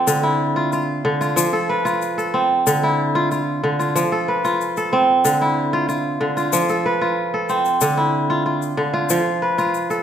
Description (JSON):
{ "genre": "west african traditional, West African string and xylophone music", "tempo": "93 BPM", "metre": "4/4", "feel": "straight", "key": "F lydian", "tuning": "A4 = 436 Hz", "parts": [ { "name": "kora", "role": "arpeggios", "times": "0.0-10.0 s", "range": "D3 to B4", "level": "-17 LUFS", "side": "equal", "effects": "none" }, { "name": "egg shaker", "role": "percussion", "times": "0.1-10.0 s", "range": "none", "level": "-26 LUFS", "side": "left 12 dB", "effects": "none" } ], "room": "moderate scoring stage reverb, RT60 1.7 s", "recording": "recorded in a church or concert hall", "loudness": "-17 LUFS", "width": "side -9 dB against mid", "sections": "0.0-10.0 A section", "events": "none", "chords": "0.1 Dm; 1.4 F; 2.7 Dm; 3.9 F; 5.2 Dm; 6.5 F; 7.8 Dm; 9.1 F" }